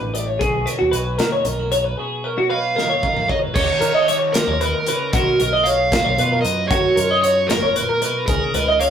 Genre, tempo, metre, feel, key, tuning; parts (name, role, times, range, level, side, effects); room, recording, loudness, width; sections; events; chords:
math rock and midwest emo; 76 BPM (dotted quarters); 6/8; straight; B lydian; A4 = 440 Hz
twelve-string electric guitar; accompaniment; 0.0-8.9 s; F#2 to C#5; -30 LUFS; right 3 dB; spring reverb
twelve-string electric guitar; arpeggios; 0.0-8.9 s; F#4 to D#5; -19 LUFS; equal; vibrato effect
modern bright fingered electric bass; bass; 0.0-8.9 s; F#1 to D#3; -26 LUFS; equal
modern studio drum kit; drums; 0.1-8.9 s; crash cymbal, hi-hat, kick drum, snare drum, toms; -24 LUFS; left 1 dB
biting overdriven guitar; melody; 2.5-8.9 s; A#4 to E#5; -21 LUFS; right 2 dB
moderate studio reverb, RT60 0.6 s; rough rehearsal-room recording; -16 LUFS; side -8 dB against mid
0.0-3.6 A section; 3.6-8.9 B section
drum fill 2.8-3.6
0.4 Bmaj9; 3.6 D#7; 5.1 Bmaj9#11; 6.7 F#maj9; 8.3 C#7sus2